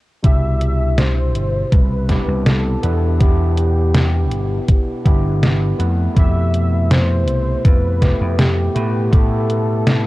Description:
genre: vaporwave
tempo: 81 BPM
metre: 4/4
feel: straight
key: C major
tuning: A4 = 441 Hz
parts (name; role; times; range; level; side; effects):
- warm velvety synth lead; melody; 0.2-10.1 s; G4 to E5; -25 LUFS; left 1 dB; chorus, analog delay
- overdriven tine electric piano; accompaniment; 0.2-10.1 s; B2 to B4; -23 LUFS; equal; wide subtle chorus
- vintage slap bass; bass; 0.2-10.1 s; G1 to A2; -17 LUFS; equal; none
- detuned 8-bit digital drum machine; drums; 0.2-10.0 s; hi-hat, snare drum; -17 LUFS; equal; none
- electronic kick drum; drums; 0.2-9.3 s; none; -14 LUFS; equal; none
room: little or no reverb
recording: dark, warm production, cassette tape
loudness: -14 LUFS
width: side -18 dB against mid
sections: 0.2-10.1 A section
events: none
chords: 0.2 Cmaj9; 5.8 Fmaj9#11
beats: | 0.24 0.98 1.72 2.46 | 3.20 3.94 4.68 5.43 | 6.17 6.91 7.65 8.39 | 9.13 9.87

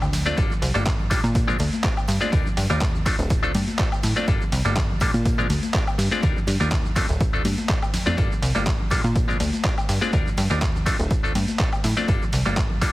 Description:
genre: filtered disco house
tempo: 123 BPM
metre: 4/4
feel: swing 53% on 16ths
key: G minor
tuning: A4 = 440 Hz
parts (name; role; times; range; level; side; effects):
- plucky analog bass; bass; 0.0-12.9 s; D1 to Bb2; -24 LUFS; equal; sidechain pumping
- dusty soul sampler-style drum kit; drums; 0.0-12.9 s; handclaps, hi-hat, ride cymbal, shaker, woodblock; -29 LUFS; equal; overdrive, sidechain pumping on hats, sidechain pumping on perc, sidechain pumping on cymbals
- tambourine and congas; percussion; 0.0-12.9 s; none; -31 LUFS; left 3 dB; sidechain pumping on perc
- bright clav; accompaniment; 0.3-12.9 s; G3 to D5; -27 LUFS; left 1 dB; phaser, sidechain pumping
- electronic kick drum; drums; 0.4-12.9 s; none; -23 LUFS; equal; none
room: little or no reverb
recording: heavily compressed radio sound, multiband compression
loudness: -19 LUFS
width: side -17 dB against mid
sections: 0.0-12.9 A section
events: none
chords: 0.4 Gm7; 1.4 Bb7; 2.3 Ebmaj9; 3.1 Dm7; 4.3 Gm7; 5.3 Bb7; 6.2 Ebmaj9; 7.0 Dm7; 8.2 Gm7; 9.2 Bb7; 10.1 Ebmaj9; 10.9 Dm7; 12.1 Gm7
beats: | 0.38 0.86 1.35 1.84 | 2.33 2.82 3.30 3.79 | 4.28 4.77 5.25 5.74 | 6.23 6.72 7.21 7.69 | 8.18 8.67 9.16 9.64 | 10.13 10.62 11.11 11.60 | 12.08 12.57

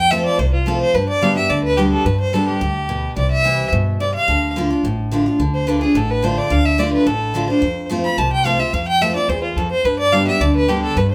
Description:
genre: bluegrass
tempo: 216 BPM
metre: 4/4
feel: straight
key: D dorian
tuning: A4 = 436 Hz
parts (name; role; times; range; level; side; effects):
- clear fiddle; melody; 0.0-11.1 s; F4 to B5; -21 LUFS; equal; none
- picked steel-string acoustic guitar; accompaniment; 0.0-11.1 s; E2 to G4; -22 LUFS; equal; none
- upright bass; bass; 0.0-11.1 s; A1 to G2; -24 LUFS; equal; none
room: moderate large studio reverb, RT60 0.9 s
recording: band playing live in one room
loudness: -18 LUFS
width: mono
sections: 0.0-5.4 A section; 5.4-11.1 A section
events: none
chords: 0.0 F; 0.9 G; 3.2 C; 4.3 Dm; 7.6 F; 9.8 G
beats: 0.11 0.39 0.67 | 0.94 1.22 1.50 1.78 | 2.06 2.34 2.61 2.89 | 3.17 3.45 3.73 4.01 | 4.28 4.56 4.84 5.12 | 5.40 5.68 5.96 6.23 | 6.51 6.79 7.07 7.35 | 7.62 7.90 8.18 8.46 | 8.74 9.01 9.29 9.57 | 9.85 10.13 10.40 10.68 | 10.96

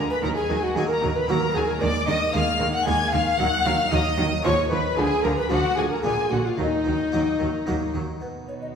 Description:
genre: classical, baroque-style concerto movement with solo episodes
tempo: 114 BPM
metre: 3/4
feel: straight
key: Eb minor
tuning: A4 = 440 Hz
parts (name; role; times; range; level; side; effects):
- rich chamber violin section; melody; 0.0-8.8 s; F#4 to Ab6; -29 LUFS; left 4 dB; none
- rich chamber violin section; second line; 0.0-8.8 s; Eb4 to Ab5; -28 LUFS; left 1 dB; none
- harpsichord; accompaniment; 0.0-8.8 s; Bb2 to Ab4; -35 LUFS; equal; none
- rich chamber viola section; accompaniment; 0.0-8.8 s; D3 to B3; -31 LUFS; right 2 dB; none
- rich chamber double bass section; bass; 0.0-8.0 s; Bb1 to Eb2; -28 LUFS; right 2 dB; none
- rich studio cello section; bass; 0.0-8.8 s; Bb2 to Eb3; -29 LUFS; right 2 dB; none
- mellow hollow tenor recorder; melody; 0.1-8.7 s; Eb4 to Ab5; -26 LUFS; left 2 dB; none
room: wet recital hall reverb, RT60 1.6 s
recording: recorded in a church or concert hall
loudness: -20 LUFS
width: side -7 dB against mid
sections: 0.0-8.2 A section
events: none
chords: 0.2 Ebm; 1.8 Bb7/Eb; 3.4 Ebm; 4.4 Fm7b5/Eb; 5.0 Bb/D; 6.0 Bb7; 6.6 Ebm; 8.2 B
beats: | 0.23 0.76 1.28 | 1.81 2.34 2.86 | 3.39 3.92 4.45 | 4.98 5.51 6.04 | 6.59 7.13 7.67 | 8.21 8.74

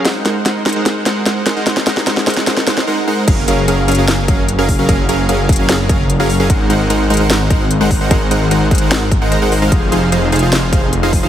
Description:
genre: future bass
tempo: 149 BPM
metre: 4/4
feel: half-time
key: Gb lydian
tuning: A4 = 440 Hz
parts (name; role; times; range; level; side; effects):
- supersaw stab; riff; 0.0-11.3 s; F3 to Bb5; -15 LUFS; right 1 dB; sidechain pumping, low-pass filter, ping-pong delay
- trap drum kit; drums; 0.1-11.2 s; crash cymbal, hi-hat, snare drum; -18 LUFS; left 1 dB; small room ambience
- wide detuned saw bass; bass; 3.3-11.3 s; F1 to Ab1; -16 LUFS; equal; chorus, sidechain pumping
- electronic kick drum; drums; 3.3-11.2 s; none; -15 LUFS; equal; small room ambience
room: light reverb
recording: heavily compressed radio sound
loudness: -11 LUFS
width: side -10 dB against mid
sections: 0.0-3.3 A section; 3.3-11.3 B section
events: build-up 0.0-3.3; drum fill 0.0-2.9; drop 3.3-11.3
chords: 0.1 Ab7; 3.3 Gbmaj7; 6.5 Ab7; 9.7 Fm7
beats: | 0.06 0.46 0.86 1.26 | 1.67 2.07 2.47 2.87 | 3.28 3.68 4.08 4.48 | 4.89 5.29 5.69 6.09 | 6.50 6.90 7.30 7.71 | 8.11 8.51 8.91 9.32 | 9.72 10.12 10.53 10.93

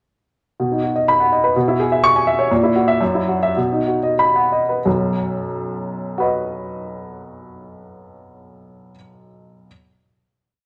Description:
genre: classical, virtuoso piano study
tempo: 90-127 BPM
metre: 2/4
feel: rubato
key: B major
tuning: A4 = 441 Hz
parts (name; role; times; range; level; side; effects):
- dark baby grand piano; solo; 0.6-9.7 s; B1 to C#6; -18 LUFS; equal; none
room: moderate large studio reverb, RT60 1.2 s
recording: none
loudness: -18 LUFS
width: mono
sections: 0.6-4.8 A section; 4.8-7.5 final chord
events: slowing down 2.0-4.8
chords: 0.6 B; 1.6 C#m7/B; 2.5 F#7/A#; 3.0 Esus2/F#; 3.6 B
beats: | 0.60 1.08 | 1.55 2.02 | 2.50 3.01 | 3.57 4.19 | 4.85 5.51 | 6.17 6.83

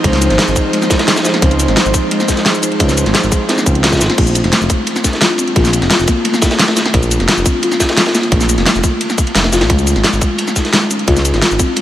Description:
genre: liquid drum and bass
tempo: 174 BPM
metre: 4/4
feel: straight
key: unclear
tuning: A4 = 440 Hz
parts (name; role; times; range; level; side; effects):
- airy breathy pad; sustained chords; 0.0-4.1 s; F3 to C5; -20 LUFS; right 1 dB; chorus, vintage 12-bit sampler grit
- kalimba; arpeggios; 0.0-11.8 s; Ab3 to C5; -17 LUFS; left 2 dB; diffuse ambient delay
- smooth synth bass; bass; 0.0-11.6 s; F1 to Db2; -16 LUFS; equal; none
- crunchy breakbeat drum kit; drums; 0.0-11.8 s; ride cymbal, snare drum; -19 LUFS; equal; high-pass filter on cymbals, high-pass filter on snare, high-pass filter on room
- electronic kick drum; drums; 0.0-11.7 s; none; -15 LUFS; equal; none
- pop drum kit; drums; 0.0-11.8 s; cabasa, crash cymbal, hi-hat, snare drum; -15 LUFS; equal; none
room: moderate huge ambient reverb, RT60 9.1 s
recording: dreamy mix soaked in reverb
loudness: -10 LUFS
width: side -12 dB against mid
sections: 0.0-4.2 A section; 4.2-11.8 A section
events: drop 0.0-4.2, 4.2-11.8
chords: 0.0 Dbmaj9; 4.2 Bbmaj7(no3); 9.7 Db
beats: | 0.04 0.39 0.73 1.08 | 1.42 1.77 2.11 2.46 | 2.80 3.15 3.49 3.84 | 4.18 4.53 4.87 5.22 | 5.56 5.91 6.25 6.59 | 6.94 7.29 7.63 7.97 | 8.32 8.66 9.01 9.35 | 9.70 10.04 10.39 10.73 | 11.08 11.42 11.77

